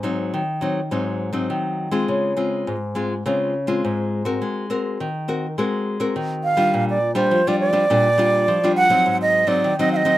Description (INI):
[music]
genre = samba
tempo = 103 BPM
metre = 4/4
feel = straight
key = unclear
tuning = A4 = 440 Hz
[part]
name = nylon-string guitar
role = accompaniment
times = 0.0-10.2 s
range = Ab2 to Bb4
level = -21 LUFS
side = left 2 dB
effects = none
[part]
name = wooden flute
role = melody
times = 6.4-10.2 s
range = C5 to Gb5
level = -17 LUFS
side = right 2 dB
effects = none
[sound]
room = light reverb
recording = close, detailed microphones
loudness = -18 LUFS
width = side -15 dB against mid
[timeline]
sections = 0.0-6.7 A section; 6.7-10.2 B section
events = none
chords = 0.0 Ab7; 2.1 Dbmaj7; 4.4 Ab9; 6.7 Bb6; 9.1 Ab7